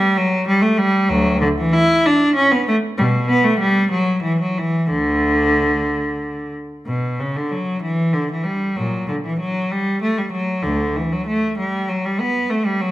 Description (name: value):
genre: classical, baroque-style suite movement for unaccompanied cello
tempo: 64 BPM (dotted quarters)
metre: 6/8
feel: rubato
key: D major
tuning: A4 = 440 Hz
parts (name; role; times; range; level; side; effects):
- rich cello; solo; 0.0-12.9 s; D2 to E4; -16 LUFS; equal; none
room: wet recital hall reverb, RT60 1.8 s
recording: none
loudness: -16 LUFS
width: side -15 dB against mid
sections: 0.0-6.9 A section; 6.9-12.9 A section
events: none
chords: none